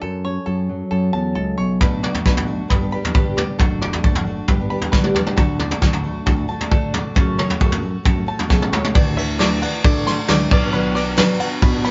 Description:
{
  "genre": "indie folk with a building arrangement",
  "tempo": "135 BPM",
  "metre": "4/4",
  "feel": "straight",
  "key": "D major",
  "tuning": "A4 = 440 Hz",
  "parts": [
    { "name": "fingerpicked steel-string acoustic guitar", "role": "accompaniment", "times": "0.0-1.8 s", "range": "F#2 to A4", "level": "-26 LUFS", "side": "equal", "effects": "none" },
    { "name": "bluegrass banjo", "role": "arpeggios", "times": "0.0-11.9 s", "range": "A4 to C6", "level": "-30 LUFS", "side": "equal", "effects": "none" },
    { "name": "picked electric bass", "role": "bass", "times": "0.0-11.9 s", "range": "F#1 to D3", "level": "-26 LUFS", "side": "equal", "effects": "none" },
    { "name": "picked twelve-string acoustic guitar", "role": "accompaniment", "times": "1.8-11.9 s", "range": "F#2 to G4", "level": "-26 LUFS", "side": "equal", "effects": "none" },
    { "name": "soft brush drum kit", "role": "drums", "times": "1.8-11.9 s", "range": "crash cymbal, kick drum, ride cymbal, snare drum, toms", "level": "-20 LUFS", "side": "equal", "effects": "none" },
    { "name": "group handclap", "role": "percussion", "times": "9.4-11.3 s", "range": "none", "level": "-34 LUFS", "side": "equal", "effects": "none" },
    { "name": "tambourine", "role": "percussion", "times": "9.4-11.3 s", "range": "none", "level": "-42 LUFS", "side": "equal", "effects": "none" }
  ],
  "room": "moderate small room reverb, RT60 0.6 s",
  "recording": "band playing live in one room, nothing above 7.6 kHz",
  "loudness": "-19 LUFS",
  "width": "mono",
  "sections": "0.0-8.9 A section; 8.9-11.9 B section",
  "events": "none",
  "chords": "0.0 F#m; 1.8 Bm7; 2.7 G; 3.6 D/F#; 4.5 G; 5.4 D; 7.2 F#m; 8.9 Dadd9; 10.5 Bm"
}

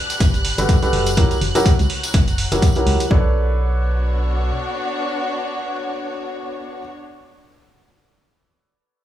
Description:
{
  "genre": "piano house",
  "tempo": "124 BPM",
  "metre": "4/4",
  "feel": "swing 56% on 16ths",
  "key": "B minor",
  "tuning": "A4 = 440 Hz",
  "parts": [
    { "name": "warm chamber violin section", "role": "sustained chords", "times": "0.0-3.1 s", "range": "F#6", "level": "-28 LUFS", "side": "equal", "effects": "sidechain pumping" },
    { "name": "clear studio string section", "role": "texture", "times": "0.0-7.0 s", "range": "B3 to B5", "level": "-28 LUFS", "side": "left 1 dB", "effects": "sidechain pumping" },
    { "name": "electronic hi-hat", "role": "drums", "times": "0.1-3.1 s", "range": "none", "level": "-27 LUFS", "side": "right 3 dB", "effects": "none" },
    { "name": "tambourine", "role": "percussion", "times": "0.1-3.1 s", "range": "none", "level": "-31 LUFS", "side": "left 3 dB", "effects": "none" },
    { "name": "organ-like FM bass", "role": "bass", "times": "0.2-4.5 s", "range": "F#1 to C#2", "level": "-20 LUFS", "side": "equal", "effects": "sidechain pumping" },
    { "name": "electronic kick drum", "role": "drums", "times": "0.2-3.2 s", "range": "none", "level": "-15 LUFS", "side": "equal", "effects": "none" },
    { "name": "clear upright piano", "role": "riff", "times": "0.6-6.8 s", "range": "F#3 to C#5", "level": "-23 LUFS", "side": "equal", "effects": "sidechain pumping, low-pass filter, dub echo" }
  ],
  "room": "light reverb",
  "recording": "studio reverb",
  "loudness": "-16 LUFS",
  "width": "side -12 dB against mid",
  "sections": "0.0-3.1 A section; 3.1-7.0 B section",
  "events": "filter sweep on upright piano 0.0-3.1",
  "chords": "0.0 Gmaj9; 1.2 F#7b9; 3.1 Bm9"
}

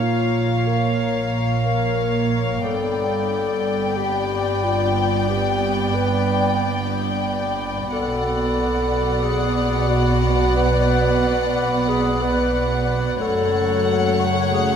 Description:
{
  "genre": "cinematic, suspense film score",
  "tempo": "91 BPM",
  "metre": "4/4",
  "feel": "straight",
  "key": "unclear",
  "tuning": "A4 = 440 Hz",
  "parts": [
    { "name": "warm symphonic violin section", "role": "melody", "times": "0.0-14.8 s", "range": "F5 to G5", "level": "-26 LUFS", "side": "left 4 dB", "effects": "none" },
    { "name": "mellow clarinet", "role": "second line", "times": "0.0-14.8 s", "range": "F4 to B4", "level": "-24 LUFS", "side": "left 2 dB", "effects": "none" },
    { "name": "warm symphonic violin section", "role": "second line", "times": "0.0-14.8 s", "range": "Db5 to D5", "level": "-28 LUFS", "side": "left 5 dB", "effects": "none" },
    { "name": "dark studio viola section", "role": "accompaniment", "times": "0.0-14.8 s", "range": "A3 to B3", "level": "-28 LUFS", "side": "right 3 dB", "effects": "none" },
    { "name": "glass harmonica", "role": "sustained chords", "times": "0.0-14.8 s", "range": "Db5 to B5", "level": "-28 LUFS", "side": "equal", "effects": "none" },
    { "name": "dark symphonic double bass section", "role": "bass", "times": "0.0-14.8 s", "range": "F#1 to B1", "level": "-25 LUFS", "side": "right 3 dB", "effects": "none" },
    { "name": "warm symphonic cello section", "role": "bass", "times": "0.0-14.8 s", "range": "F#2 to B2", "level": "-26 LUFS", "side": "right 3 dB", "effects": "none" },
    { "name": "concert harp", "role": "texture", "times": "0.0-14.8 s", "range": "B5 to B6", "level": "-37 LUFS", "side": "left 6 dB", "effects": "none" }
  ],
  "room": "wet scoring stage reverb, RT60 2.0 s",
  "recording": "minimal, uncompressed stereo recording",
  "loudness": "-18 LUFS",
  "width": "side -8 dB against mid",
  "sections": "0.0-14.8 A section",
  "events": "none",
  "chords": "0.0 Bbm; 2.7 G; 7.9 Bm; 13.2 F#m"
}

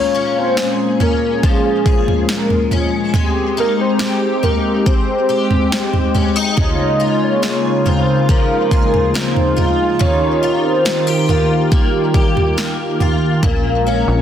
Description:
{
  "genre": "dream pop",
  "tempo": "70 BPM",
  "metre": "4/4",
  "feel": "straight",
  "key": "Eb mixolydian",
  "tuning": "A4 = 440 Hz",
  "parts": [
    { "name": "warm velvety synth lead", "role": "melody", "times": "0.0-14.2 s", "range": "G4 to Eb5", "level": "-19 LUFS", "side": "equal", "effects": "chorus, tremolo, tape echo" },
    { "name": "hollow soft pad", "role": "sustained chords", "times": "0.0-14.2 s", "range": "Db3 to Bb4", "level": "-18 LUFS", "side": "equal", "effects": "chorus" },
    { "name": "picked twelve-string acoustic guitar", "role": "arpeggios", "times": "0.0-14.2 s", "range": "Bb2 to Ab4", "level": "-21 LUFS", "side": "left 4 dB", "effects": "ensemble chorus, tape echo" },
    { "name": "deep house drum kit", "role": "drums", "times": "0.6-13.6 s", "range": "kick drum, snare drum, toms", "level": "-17 LUFS", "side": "right 1 dB", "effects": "none" },
    { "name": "plucky analog bass", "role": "bass", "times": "13.4-14.2 s", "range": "Bb1", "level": "-18 LUFS", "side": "equal", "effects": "none" }
  ],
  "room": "moderate lush hall reverb, RT60 2.5 s",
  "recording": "dense, heavily limited modern master",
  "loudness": "-13 LUFS",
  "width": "side -9 dB against mid",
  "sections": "0.0-14.2 A section",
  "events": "none",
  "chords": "0.0 Bbm7; 3.1 Abmaj7; 6.6 Db6; 10.0 Ebadd9; 13.4 Bbm7"
}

